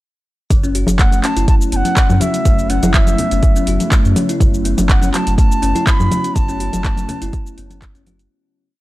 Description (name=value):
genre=afro house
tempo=123 BPM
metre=4/4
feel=straight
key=F# minor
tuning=A4 = 442 Hz
part: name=ethereal airy pad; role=sustained chords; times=1.3-8.3 s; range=C#3 to F#4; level=-26 LUFS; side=equal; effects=ensemble chorus, built-in reverb, phaser, sidechain pumping
part: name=kalimba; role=arpeggios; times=0.5-8.2 s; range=F#3 to F#4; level=-22 LUFS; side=left 1 dB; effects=sidechain pumping, analog delay
part: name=warm sub bass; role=bass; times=0.5-8.3 s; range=F#1 to F#2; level=-19 LUFS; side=equal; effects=sidechain pumping
part: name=afro-pop drum kit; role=drums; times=0.5-8.3 s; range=cabasa, handclaps, hi-hat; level=-22 LUFS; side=equal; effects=none
part: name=electronic kick drum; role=drums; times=0.5-7.9 s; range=none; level=-14 LUFS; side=equal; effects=none
part: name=congas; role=percussion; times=0.5-8.2 s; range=none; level=-21 LUFS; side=left 1 dB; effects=none
part: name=bright reedy bansuri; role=melody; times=1.0-7.8 s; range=E5 to B5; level=-22 LUFS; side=right 1 dB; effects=analog delay
room=studio reverb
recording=dry, gritty hardware recording, transformer saturation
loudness=-12 LUFS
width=side -17 dB against mid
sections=0.5-8.3 drop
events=drop 0.5-8.3; fade-out 5.7-8.3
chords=0.5 F#m7